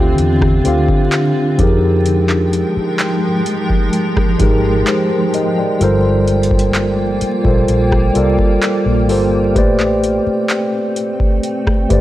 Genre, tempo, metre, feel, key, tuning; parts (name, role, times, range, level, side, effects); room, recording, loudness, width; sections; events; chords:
contemporary R&B; 64 BPM; 4/4; straight; A4 = 441 Hz
mellow tine electric piano; accompaniment; 0.0-12.0 s; D3 to G5; -15 LUFS; equal; medium stereo tremolo
granular cloud pad; sustained chords; 0.0-12.0 s; D3 to G5; -21 LUFS; equal; built-in reverb
vintage muted fingered electric bass; bass; 0.0-12.0 s; G1 to F2; -17 LUFS; equal
booming analog drum machine; drums; 0.2-12.0 s; handclaps, hi-hat, kick drum, rim click; -17 LUFS; equal; overdrive
little or no reverb; dry, gritty hardware recording, vinyl crackle; -12 LUFS; side -14 dB against mid
0.0-12.0 A section
0.0 Dm11; 1.6 Fm11; 5.8 Gm11; 9.6 Am11